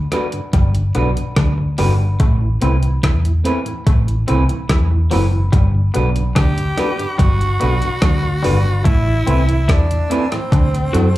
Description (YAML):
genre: lovers rock reggae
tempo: 72 BPM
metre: 4/4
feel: straight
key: G major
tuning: A4 = 439 Hz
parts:
  - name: vintage muted fingered electric bass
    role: bass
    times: 0.0-11.1 s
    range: F#1 to F#2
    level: -16 LUFS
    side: equal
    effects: none
  - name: mellow tine electric piano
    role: accompaniment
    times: 0.1-11.1 s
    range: C4 to B4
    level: -24 LUFS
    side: left 2 dB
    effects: medium stereo tremolo, slapback echo
  - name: mellow tonewheel organ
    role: accompaniment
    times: 0.1-11.2 s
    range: D2 to F#4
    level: -27 LUFS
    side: right 3 dB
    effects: slow rotary speaker, slapback echo
  - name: electric guitar through a small old amp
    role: stabs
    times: 0.1-11.1 s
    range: C4 to B4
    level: -26 LUFS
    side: right 3 dB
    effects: spring reverb, dub echo, slapback echo
  - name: crisp 8-bit digital drum machine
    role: drums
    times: 0.1-11.2 s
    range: hi-hat, kick drum, rim click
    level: -17 LUFS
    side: equal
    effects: overdrive
  - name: twangy electric guitar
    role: riff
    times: 0.5-11.1 s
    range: F#3 to F#4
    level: -27 LUFS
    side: left 3 dB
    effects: dub echo, slapback echo
  - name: raspy tenor saxophone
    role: melody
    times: 6.4-11.2 s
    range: C4 to G4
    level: -22 LUFS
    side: right 1 dB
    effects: tape echo, slapback echo
room: light reverb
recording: live gig heard through the venue's PA, club reverb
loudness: -14 LUFS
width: side -16 dB against mid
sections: 0.0-11.2 A section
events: none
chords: 0.0 Gmaj7; 2.2 Amadd9; 5.5 Gmaj7; 8.9 Amadd9; 10.5 D7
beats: 0.54 1.37 | 2.20 3.03 3.87 4.70 | 5.53 6.36 7.19 8.03 | 8.86 9.69 10.52